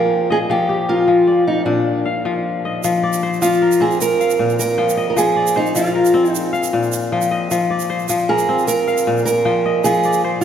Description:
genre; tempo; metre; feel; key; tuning
west african traditional, West African string and xylophone music; 103 BPM (dotted quarters); 12/8; straight; F dorian; A4 = 440 Hz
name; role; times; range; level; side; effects
fingerpicked steel-string acoustic guitar; melody; 0.0-10.4 s; D4 to Bb4; -17 LUFS; right 2 dB; none
kora; arpeggios; 0.0-10.4 s; Bb2 to G5; -19 LUFS; left 4 dB; none
tube shaker; percussion; 2.8-10.2 s; none; -28 LUFS; right 6 dB; none
room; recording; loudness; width
wet cathedral reverb, RT60 7.0 s; recorded in a church or concert hall, faint mains hum; -14 LUFS; side -8 dB against mid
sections
0.0-2.8 A section; 2.8-10.4 B section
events
none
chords
0.0 Bb5; 0.5 F13sus4; 1.7 Bb; 2.8 F5; 4.0 Bb5; 5.2 Fm; 6.3 Bb5; 7.5 Fm; 8.7 Bb5; 9.8 Fm

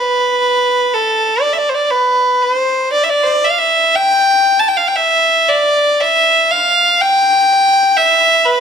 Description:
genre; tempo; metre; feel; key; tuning
celtic folk; 58-62 BPM; 3/4; rubato; unclear; A4 = 440 Hz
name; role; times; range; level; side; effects
rich fiddle; solo; 0.0-8.6 s; A4 to A5; -10 LUFS; equal; none
room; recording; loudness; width
moderate recital hall reverb, RT60 1.6 s; none; -10 LUFS; side -7 dB against mid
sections
0.0-8.6 A section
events
none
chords
none

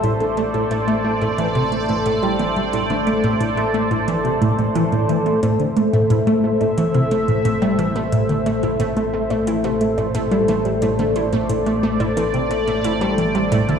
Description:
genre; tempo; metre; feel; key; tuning
ambient, sequencer-driven space music; 89 BPM; 4/4; straight; A minor; A4 = 440 Hz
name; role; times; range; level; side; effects
sweeping resonant pad; sustained chords; 0.0-13.8 s; A3 to E5; -20 LUFS; equal; chorus
wide unison pluck; arpeggios; 0.0-13.8 s; A2 to E4; -27 LUFS; right 1 dB; auto-pan, tape echo
tight sequenced synth; riff; 0.0-13.7 s; A2 to A3; -20 LUFS; equal; chorus, phaser, tape echo
fat analog bass; bass; 0.0-13.8 s; A1; -31 LUFS; equal; none
electronic hi-hat and woodblock; percussion; 0.0-13.8 s; none; -38 LUFS; right 2 dB; tape echo
room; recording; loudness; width
wet concert hall reverb, RT60 2.4 s; played on a big sound system in a bare room, large studio reverb; -16 LUFS; side -7 dB against mid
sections
0.0-13.8 A section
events
none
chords
0.0 Am

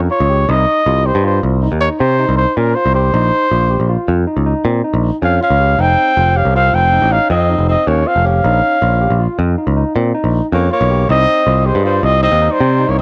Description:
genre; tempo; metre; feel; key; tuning
progressive instrumental, progressive; 158 BPM; 7/4; straight; Bb dorian; A4 = 440 Hz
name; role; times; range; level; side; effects
barky tine electric piano; arpeggios; 0.0-13.0 s; C4 to G4; -24 LUFS; equal; none
picked electric bass; bass; 0.0-13.0 s; F1 to C3; -16 LUFS; equal; none
breathy trumpet; melody; 0.1-13.0 s; Bb4 to G5; -17 LUFS; equal; none
clear alto saxophone; second line; 5.2-13.0 s; G3 to Db4; -25 LUFS; equal; none
room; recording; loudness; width
small room ambience; none; -14 LUFS; mono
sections
0.0-13.0 A section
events
none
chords
0.5 Cm; 3.1 Bbmadd9; 5.8 F5; 8.4 Bbm; 11.1 Cm

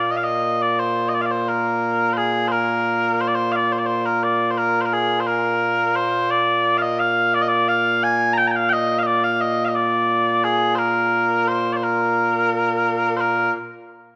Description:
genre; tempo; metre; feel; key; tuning
scottish traditional, Scottish pipe music; 87 BPM; 2/4; straight; Bb mixolydian; A4 = 439 Hz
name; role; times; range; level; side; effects
mellow small bagpipes; solo; 0.0-13.5 s; Bb2 to Bb5; -20 LUFS; equal; none
room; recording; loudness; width
wet recital hall reverb, RT60 1.8 s; none; -20 LUFS; mono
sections
0.0-2.2 A section; 2.2-13.2 B section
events
none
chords
none

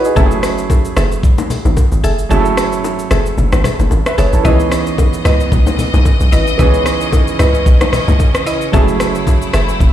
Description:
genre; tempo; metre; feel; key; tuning
amapiano; 112 BPM; 4/4; swing 55% on 16ths; unclear; A4 = 440 Hz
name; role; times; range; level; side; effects
warm grand piano; accompaniment; 0.0-9.9 s; E3 to E5; -19 LUFS; right 5 dB; none
smooth R&B drum kit; drums; 0.0-9.9 s; hi-hat, kick drum, rim click, shaker; -15 LUFS; equal; none
mallet-like synth pluck; stabs; 0.2-9.8 s; E4 to E5; -21 LUFS; left 2 dB; chorus, ping-pong delay
tight log drum bass; bass; 0.2-9.9 s; F#1 to C#2; -15 LUFS; equal; none
congas and bongos; percussion; 0.2-9.9 s; none; -21 LUFS; left 5 dB; none
bright studio string section; sustained chords; 4.5-9.9 s; C#3 to D#5; -21 LUFS; equal; sidechain pumping
room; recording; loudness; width
small room ambience; played on a big sound system in a bare room, stone room reverb; -11 LUFS; side -11 dB against mid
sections
0.0-9.9 A section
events
kick muted 2.3-4.5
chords
0.2 F#m9; 4.5 C#m9; 8.7 F#m9

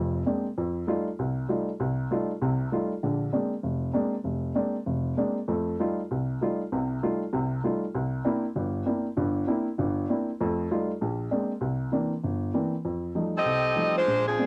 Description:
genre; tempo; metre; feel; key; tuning
jazz; 195 BPM; 4/4; swing 60% on 8ths; F major; A4 = 437 Hz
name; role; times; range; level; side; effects
dark upright piano; accompaniment; 0.0-14.5 s; F1 to F4; -29 LUFS; equal; none
mellow saxophone section; melody; 13.4-14.5 s; F3 to Eb5; -25 LUFS; equal; cassette tape
room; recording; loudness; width
moderate booth ambience, RT60 0.2 s; home recording on cassette; -28 LUFS; mono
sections
0.0-12.8 A section; 12.8-14.5 B section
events
none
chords
0.0 Bb9; 0.6 F9; 3.0 Bb9; 5.5 F9; 7.9 C9; 10.4 F9; 11.0 Bb9; 11.6 C9; 12.8 F9

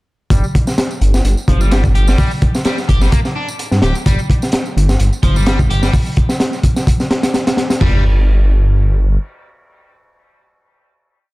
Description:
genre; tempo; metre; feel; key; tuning
breakbeat, breaks; 128 BPM; 4/4; swing 54% on 16ths; unclear; A4 = 439 Hz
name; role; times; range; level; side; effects
biting overdriven guitar; riff; 0.3-8.0 s; F3 to G4; -25 LUFS; left 1 dB; vintage 12-bit sampler grit, low-pass filter, dub echo
phased detuned saw bass; bass; 0.3-9.2 s; D1 to G2; -13 LUFS; equal; phaser
crunchy breakbeat drum kit; drums; 0.3-7.9 s; crash cymbal, hi-hat, kick drum, snare drum, toms; -14 LUFS; equal; none
tambourine; drums; 0.3-7.8 s; none; -32 LUFS; right 2 dB; overdrive
room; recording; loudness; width
studio reverb; dark, warm production; -12 LUFS; side -21 dB against mid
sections
0.3-7.8 groove; 7.8-11.3 final note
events
filter sweep on overdriven electric guitar 0.3-5.9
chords
none

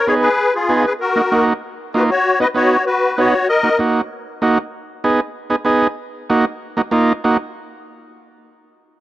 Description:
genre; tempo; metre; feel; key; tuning
latin; 193 BPM; 4/4; straight; Eb minor; A4 = 440 Hz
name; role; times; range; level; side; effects
musette accordion; melody; 0.0-3.8 s; F4 to D#5; -16 LUFS; left 2 dB; none
combo organ; accompaniment; 0.1-7.4 s; Bb3 to Ab4; -17 LUFS; right 2 dB; none
room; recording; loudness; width
light reverb, small room ambience; dry, close 1970s-style studio recording; -14 LUFS; side -14 dB against mid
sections
0.0-4.7 A section; 4.7-7.2 B section; 7.2-8.5 C section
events
none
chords
0.0 Abm; 1.0 Ebm; 2.2 B; 3.5 Ebm; 4.7 Abm; 6.0 Ebm

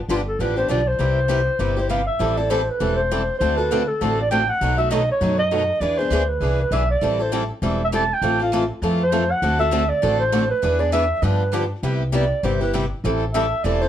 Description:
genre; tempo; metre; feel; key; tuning
acoustic string swing (jazz manouche); 199 BPM; 4/4; swing 58% on 8ths; A minor; A4 = 440 Hz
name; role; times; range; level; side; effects
upright bass; bass; 0.0-13.9 s; E1 to G2; -24 LUFS; equal; none
breathy clarinet; melody; 0.1-13.9 s; F4 to A5; -21 LUFS; right 1 dB; none
picked steel-string acoustic guitar; accompaniment; 0.1-13.9 s; B2 to A4; -25 LUFS; left 5 dB; none
picked steel-string acoustic guitar; accompaniment; 0.1-13.8 s; B2 to B4; -28 LUFS; right 6 dB; none
room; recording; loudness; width
light reverb; worn, warbling old tape, cassette tape, warbly pitch drift; -18 LUFS; side -10 dB against mid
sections
0.0-2.2 A section; 2.2-11.8 B section; 11.8-13.9 C section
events
clarinet solo 11.8-13.9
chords
0.0 G7; 1.0 Cmaj7; 2.2 Am7; 3.4 D7; 4.6 B7; 5.8 E7; 7.0 Am7; 8.2 Fmaj7/A; 9.4 D7; 10.6 E7; 11.2 G7; 11.8 Cmaj7; 13.0 Am7

